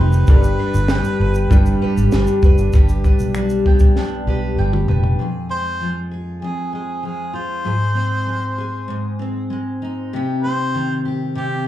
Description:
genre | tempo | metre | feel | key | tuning
acoustic pop | 98 BPM | 4/4 | straight | unclear | A4 = 440 Hz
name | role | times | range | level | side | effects
mellow harmonica | melody | 0.0-11.6 s | G4 to C5 | -24 LUFS | equal | plate reverb, slapback echo
bright upright piano | accompaniment | 0.0-2.8 s | G3 to C5 | -26 LUFS | left 4 dB | slapback echo
picked steel-string acoustic guitar | accompaniment | 0.0-11.7 s | F2 to Ab4 | -21 LUFS | left 1 dB | double-tracked left and right
bowl-back mandolin | arpeggios | 0.0-5.3 s | G3 to G5 | -31 LUFS | right 4 dB | plate reverb, slapback echo, digital delay
vintage muted fingered electric bass | bass | 0.0-5.1 s | F1 to B1 | -17 LUFS | equal | none
compact cocktail drum kit | drums | 0.1-5.2 s | finger snaps, kick drum, shaker, snare drum, toms | -16 LUFS | equal | none
room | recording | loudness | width
light reverb | live gig heard through the venue's PA, club reverb | -16 LUFS | side -13 dB against mid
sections
0.0-2.7 A section; 2.7-5.2 B section; 5.2-11.7 C section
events
drum fill 4.0-5.2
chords
0.3 G; 5.2 Fm; 7.7 Ab; 10.1 Cm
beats
| 0.28 0.90 1.51 2.12 | 2.73 3.35 3.96 4.58 | 5.19 5.81 6.42 7.04 | 7.66 8.27 8.89 9.50 | 10.12 10.74 11.35

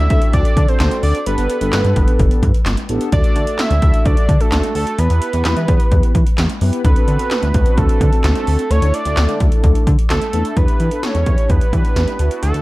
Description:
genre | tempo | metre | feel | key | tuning
synth-pop | 129 BPM | 4/4 | straight | D major | A4 = 440 Hz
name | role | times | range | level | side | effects
fat analog lead | melody | 0.0-12.6 s | A4 to E5 | -22 LUFS | right 2 dB | analog delay
chorused synth bass | bass | 0.0-12.6 s | G1 to E3 | -16 LUFS | equal | none
mellow synth brass | accompaniment | 0.1-12.6 s | A3 to B4 | -23 LUFS | left 1 dB | chorus
80s electronic pad drums | drums | 0.1-12.6 s | handclaps, hi-hat, kick drum, snare drum | -16 LUFS | equal | none
room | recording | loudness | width
little or no reverb | none | -13 LUFS | side -19 dB against mid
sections
0.0-10.6 A section; 10.6-12.6 B section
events
none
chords
0.0 D7; 1.3 Gadd9; 3.1 D; 5.0 Em; 6.8 D7; 8.7 Dsus2; 10.6 Em7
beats
0.33 0.80 | 1.26 1.73 2.19 2.66 | 3.12 3.59 4.05 4.52 | 4.99 5.45 5.92 6.38 | 6.85 7.31 7.78 8.24 | 8.71 9.17 9.64 10.10 | 10.57 11.03 11.50 11.96 | 12.43

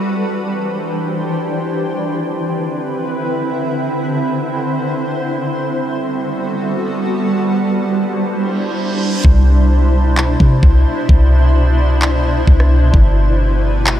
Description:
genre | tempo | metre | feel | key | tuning
hip hop, atmospheric cloud-rap | free time | none | none | unclear | A4 = 440 Hz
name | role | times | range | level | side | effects
shimmering ambient pad | sustained chords | 0.0-14.0 s | B2 to C5 | -17 LUFS | equal | chorus, built-in reverb, sidechain pumping
reverse cymbal | sound effects | 8.5-9.2 s | none | -28 LUFS | right 5 dB | none
soft 808-style bass | bass | 9.2-14.0 s | G1 to C3 | -12 LUFS | equal | none
trap drum kit | drums | 9.2-14.0 s | handclaps, kick drum, rim click | -12 LUFS | equal | none
room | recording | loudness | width
light reverb | none | -13 LUFS | side -12 dB against mid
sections
0.0-9.2 A section; 9.2-14.0 B section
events
reverse cymbal 8.5-9.2; hi-hats muted 9.2-14.0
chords
0.0 D9sus4; 1.9 Cmaj9; 5.6 Gmaj9; 7.4 D9sus4; 9.2 Cmaj9; 12.9 Gmaj9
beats
free time

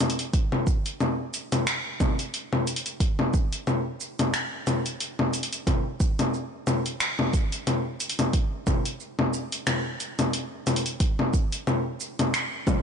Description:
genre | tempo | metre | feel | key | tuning
downtempo | 90 BPM | 4/4 | swing 56% on 16ths | none | none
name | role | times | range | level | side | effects
deep house drum kit | drums | 0.0-12.8 s | congas, finger snaps, hi-hat, shaker, toms | -25 LUFS | left 1 dB | soft clipping on snare
electronic kick drum | drums | 0.3-12.8 s | none | -24 LUFS | right 1 dB | none
room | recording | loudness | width
light reverb | blown-out, overdriven recording, overdrive, nothing above 10.4 kHz | -24 LUFS | side -7 dB against mid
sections
0.0-12.8 A section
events
drum fill 12.7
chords
none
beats
| 0.34 1.00 1.67 2.33 | 3.00 3.67 4.33 5.00 | 5.67 6.33 7.00 7.67 | 8.34 9.00 9.67 10.34 | 11.00 11.67 12.34

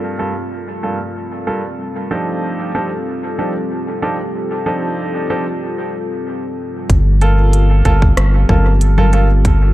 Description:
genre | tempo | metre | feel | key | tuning
ambient dub | 94 BPM | 4/4 | straight | G minor | A4 = 440 Hz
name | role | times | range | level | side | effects
deep dark ambient pad | sustained chords | 0.0-9.7 s | G3 to A4 | -23 LUFS | left 1 dB | chorus, built-in reverb
clear upright piano | stabs | 0.0-9.3 s | G2 to A4 | -21 LUFS | right 2 dB | low-pass filter, dub echo
round analog bass | bass | 6.9-9.7 s | G1 | -11 LUFS | equal | none
electronic kick drum | drums | 6.9-9.6 s | none | -14 LUFS | equal | none
organic electronic drum kit | drums | 6.9-9.6 s | congas, hi-hat, rim click | -22 LUFS | left 2 dB | dub echo
room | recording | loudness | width
light reverb, digital ambience | dark, warm production | -14 LUFS | side -16 dB against mid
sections
0.0-6.9 A section; 6.9-9.7 B section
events
break 5.6-6.9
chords
0.0 Gm7; 1.8 F13; 6.9 Gm7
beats
0.51 1.15 | 1.79 2.43 3.06 3.70 | 4.34 4.98 5.62 6.26 | 6.89 7.53 8.17 8.81 | 9.45

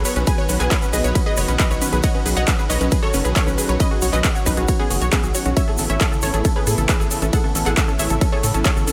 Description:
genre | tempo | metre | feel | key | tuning
uplifting trance | 136 BPM | 4/4 | straight | unclear | A4 = 440 Hz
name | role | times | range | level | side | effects
unison pluck | melody | 0.0-8.9 s | B3 to G#5 | -27 LUFS | equal | sidechain pumping, tape echo
supersaw pad | sustained chords | 0.0-8.9 s | A2 to F#4 | -30 LUFS | equal | sidechain pumping
tight sequencer bass | bass | 0.0-8.8 s | F#1 to A2 | -24 LUFS | equal | sidechain pumping
egg shaker | percussion | 0.0-8.9 s | none | -32 LUFS | equal | none
unison pluck | arpeggios | 0.1-8.9 s | C#3 to C#5 | -30 LUFS | equal | sidechain pumping, tape echo
big-room dance drum kit | drums | 0.1-8.9 s | handclaps, hi-hat, ride cymbal | -28 LUFS | equal | overdrive, sidechain pumping on hats, sidechain pumping on cymbals
electronic kick drum | drums | 0.3-8.7 s | none | -22 LUFS | equal | overdrive
room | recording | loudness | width
light reverb | none | -19 LUFS | mono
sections
0.0-8.9 A section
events
none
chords
0.0 B; 5.6 Asus2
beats
| 0.27 0.71 1.15 1.59 | 2.04 2.48 2.92 3.36 | 3.80 4.24 4.68 5.12 | 5.57 6.01 6.45 6.89 | 7.33 7.77 8.21 8.65

